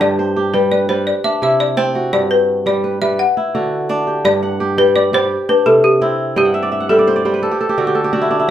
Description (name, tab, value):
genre	west african traditional, West African string and xylophone music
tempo	113 BPM (dotted quarters)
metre	12/8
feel	straight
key	G major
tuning	A4 = 440 Hz
part	balafon	melody	0.0-7.6 s	G4 to F#5	-15 LUFS	left 2 dB	plate reverb
part	kora	arpeggios	0.0-8.5 s	G2 to G5	-16 LUFS	right 1 dB	none
room	wet small room reverb, RT60 0.5 s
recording	heard from further back in the room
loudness	-13 LUFS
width	side -10 dB against mid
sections	0.0-4.2 A section; 4.2-8.5 A section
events	kora fill 6.4-8.5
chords	0.0 G; 1.1 C; 2.1 G; 3.2 D; 4.2 G5; 5.3 C; 6.4 Gmaj7sus2; 7.4 N.C.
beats	| 0.00 0.53 1.06 1.59 | 2.12 2.65 3.18 3.71 | 4.24 4.77 5.30 5.83 | 6.36 6.89 7.42 7.95 | 8.48